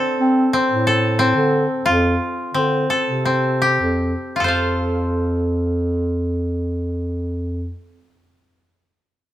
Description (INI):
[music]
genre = contemporary instrumental, chamber music in an uneven meter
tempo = 159-185 BPM (eighths)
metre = 7/8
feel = straight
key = F major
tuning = A4 = 439 Hz
[part]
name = koto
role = arpeggios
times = 0.0-8.5 s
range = C4 to F5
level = -18 LUFS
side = left 1 dB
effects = none
[part]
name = mellow bass clarinet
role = bass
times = 0.2-7.7 s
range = F2 to C4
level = -20 LUFS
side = equal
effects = none
[sound]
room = light reverb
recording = close, detailed microphones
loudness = -17 LUFS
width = side -13 dB against mid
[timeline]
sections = 0.0-4.4 A section; 4.4-7.0 B section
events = slowing down 0.0-4.4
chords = 0.0 D5; 1.9 F